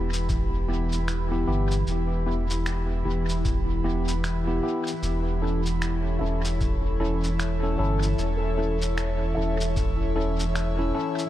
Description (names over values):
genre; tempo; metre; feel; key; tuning
ambient dub; 76 BPM; 4/4; swing 60% on 16ths; unclear; A4 = 440 Hz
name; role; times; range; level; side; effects
airy breathy pad; sustained chords; 0.0-11.3 s; E3 to B5; -30 LUFS; right 1 dB; chorus
tine electric piano; stabs; 0.0-11.2 s; B3 to A4; -31 LUFS; left 1 dB; auto-pan, dub echo
warm sub bass; bass; 0.0-10.9 s; E1 to G1; -26 LUFS; equal; none
electronic cabasa and finger snaps; drums; 0.1-11.3 s; none; -36 LUFS; equal; small room reverb, dub echo
electronic kick drum; drums; 0.3-10.0 s; none; -29 LUFS; equal; small room reverb
felt-muted upright piano; arpeggios; 6.2-11.3 s; A4 to E5; -37 LUFS; right 3 dB; dub echo
room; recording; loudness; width
digital ambience; none; -23 LUFS; side -13 dB against mid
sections
0.0-11.3 A section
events
none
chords
0.0 Em; 5.0 A/E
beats
0.29 1.08 | 1.87 2.66 3.45 4.24 | 5.03 5.82 6.61 7.40 | 8.19 8.97 9.77 10.55